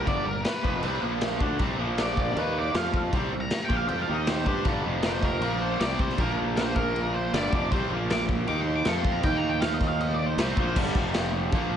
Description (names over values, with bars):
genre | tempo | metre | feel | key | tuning
garage rock duo or trio | 157 BPM | 4/4 | straight | unclear | A4 = 440 Hz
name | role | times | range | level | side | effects
octave-fuzz lead guitar | melody | 0.0-10.8 s | Bb4 to D6 | -31 LUFS | equal | distortion
raw garage guitar | riff | 0.0-11.8 s | F2 to G4 | -29 LUFS | right 2 dB | overdrive
fuzz fingered electric bass | bass | 0.0-11.8 s | F1 to G2 | -31 LUFS | equal | overdrive
raw garage drum kit | drums | 0.1-11.6 s | crash cymbal, kick drum, snare drum | -28 LUFS | equal | none
room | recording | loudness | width
studio reverb | nothing above 10.4 kHz | -24 LUFS | side -9 dB against mid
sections
0.0-10.8 A section; 10.8-11.8 B section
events
lead electric guitar solo 0.0-10.8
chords
0.1 G; 1.0 Bb5; 1.4 D5; 1.6 C5; 1.8 Bb5; 2.4 Eb5; 2.8 F5; 3.1 C5; 4.1 Eb5; 4.5 G5; 4.9 F5; 5.4 Bb5; 5.8 C5; 6.2 Bb5; 7.3 G5; 7.7 C5; 7.9 Bb5; 8.5 Eb5; 8.9 F5; 9.2 Eb5; 10.4 C5; 10.8 G5; 11.0 F5